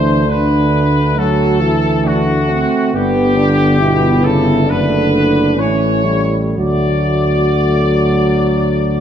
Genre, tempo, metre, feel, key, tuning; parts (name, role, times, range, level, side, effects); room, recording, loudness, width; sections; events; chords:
classical, hymn-like piece for brass band; 56-70 BPM; 4/4; rubato; D major; A4 = 440 Hz
bright trumpet section; melody; 0.0-9.0 s; F#4 to D5; -18 LUFS; left 4 dB
mellow French horn section; second line; 0.0-9.0 s; B3 to F#4; -18 LUFS; right 3 dB
clear trombone; accompaniment; 0.0-9.0 s; B2 to G3; -20 LUFS; right 2 dB
warm trombone section; accompaniment; 0.0-9.0 s; A3 to B3; -20 LUFS; left 1 dB
mellow tuba; bass; 0.0-9.0 s; F#1 to D2; -16 LUFS; equal
moderate recital hall reverb, RT60 1.4 s; dark, warm production; -11 LUFS; side -9 dB against mid
0.0-9.0 A section
0.0 D7; 2.9 G; 4.7 D/F#; 5.6 A7; 6.6 D